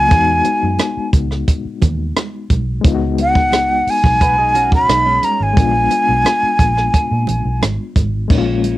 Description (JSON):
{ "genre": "lush 1970s-style soul", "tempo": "88 BPM", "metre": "4/4", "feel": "straight", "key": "unclear", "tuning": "A4 = 441 Hz", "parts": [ { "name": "breathy jazz flute", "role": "melody", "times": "0.0-7.6 s", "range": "Gb5 to Cb6", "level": "-14 LUFS", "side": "equal", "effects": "cassette tape" }, { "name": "reed electric piano", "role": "accompaniment", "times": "0.0-8.8 s", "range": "Gb3 to F#4", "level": "-22 LUFS", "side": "left 7 dB", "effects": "overdrive, fast tremolo, cassette tape" }, { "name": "vintage muted fingered electric bass", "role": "bass", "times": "0.0-8.7 s", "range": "Ab1 to Bb2", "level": "-19 LUFS", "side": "right 1 dB", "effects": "none" }, { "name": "compact cocktail drum kit", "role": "drums", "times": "0.1-8.8 s", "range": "crash cymbal, hi-hat, kick drum, rim click", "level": "-16 LUFS", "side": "right 1 dB", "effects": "cassette tape" }, { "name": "congas", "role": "percussion", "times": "0.5-8.8 s", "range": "none", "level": "-27 LUFS", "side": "right 9 dB", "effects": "none" }, { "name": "electric guitar through a small old amp", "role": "riff", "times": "4.2-5.6 s", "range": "Ab3 to Cb5", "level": "-23 LUFS", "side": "right 7 dB", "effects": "analog chorus, cassette tape" } ], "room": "little or no reverb", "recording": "home recording on cassette", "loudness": "-13 LUFS", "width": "side -16 dB against mid", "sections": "0.0-8.3 A section", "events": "none", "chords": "0.1 Emaj9 (rootless); 2.8 Db7sus4; 5.6 Bb7b9" }